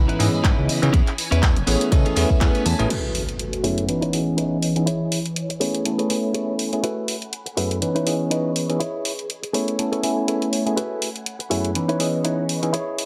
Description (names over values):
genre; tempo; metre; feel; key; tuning
filtered disco house; 122 BPM; 4/4; swing 56% on 16ths; F# dorian; A4 = 440 Hz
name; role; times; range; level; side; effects
bell-like tine electric piano; accompaniment; 0.0-12.7 s; F#2 to G#5; -26 LUFS; equal; phaser, sidechain pumping, low-pass filter
phased string machine; sustained chords; 0.0-13.1 s; E3 to C#6; -33 LUFS; equal; ensemble chorus, phaser, vintage 12-bit sampler grit, sidechain pumping, low-pass filter
fat analog bass; bass; 0.0-2.9 s; E1 to C#3; -24 LUFS; equal; tube saturation, sidechain pumping, low-pass filter
direct-recorded clean electric guitar; riff; 0.1-13.1 s; B3 to A5; -29 LUFS; equal; sidechain pumping, low-pass filter
house drum kit; drums; 0.1-13.1 s; crash cymbal, handclaps, hi-hat; -30 LUFS; equal; sidechain pumping on hats, sidechain pumping on cymbals
tambourine; percussion; 0.1-2.9, 10.8-13.1 s; none; -35 LUFS; equal; sidechain pumping on perc, low-pass filter on perc
electronic kick drum; drums; 0.4-2.5 s; none; -20 LUFS; equal; none
impact; sound effects; 2.9-4.9 s; none; -35 LUFS; equal; none
room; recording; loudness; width
light reverb, digital ambience; none; -22 LUFS; mono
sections
0.0-2.9 A section; 2.9-13.1 B section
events
clean electric guitar fill 1.4-2.9, 9.8-10.8; impact 2.9-4.9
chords
0.0 C#m9; 0.9 E6; 1.7 Amaj9; 2.9 F#m11; 3.9 C#m9; 4.9 E6; 5.6 Amaj9; 6.8 F#m11; 7.8 C#m9; 8.8 E6; 9.5 Amaj9; 10.8 F#m11; 11.8 C#m9